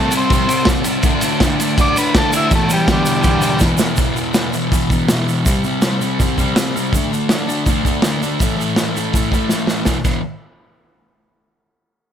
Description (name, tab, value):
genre	garage rock duo or trio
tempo	163 BPM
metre	4/4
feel	straight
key	E minor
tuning	A4 = 440 Hz
part	overdriven combo organ	melody	0.0-3.6 s	D3 to D5	-19 LUFS	equal	none
part	fuzz guitar	riff	0.0-10.2 s	E2 to D4	-18 LUFS	left 1 dB	distortion
part	crunchy breakbeat drum kit	drums	0.1-10.1 s	crash cymbal, hi-hat, kick drum, ride cymbal, snare drum	-17 LUFS	equal	none
part	tube shaker	percussion	0.1-10.2 s	none	-29 LUFS	right 4 dB	none
room	small room ambience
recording	none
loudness	-14 LUFS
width	side -9 dB against mid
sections	0.0-4.0 A section; 4.0-9.9 B section; 9.9-11.3 C section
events	drum fill 3.6-4.0, 9.5-9.9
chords	0.0 C5; 1.0 D5; 2.5 Em; 5.4 C5; 6.9 D5; 8.4 A5; 9.9 E5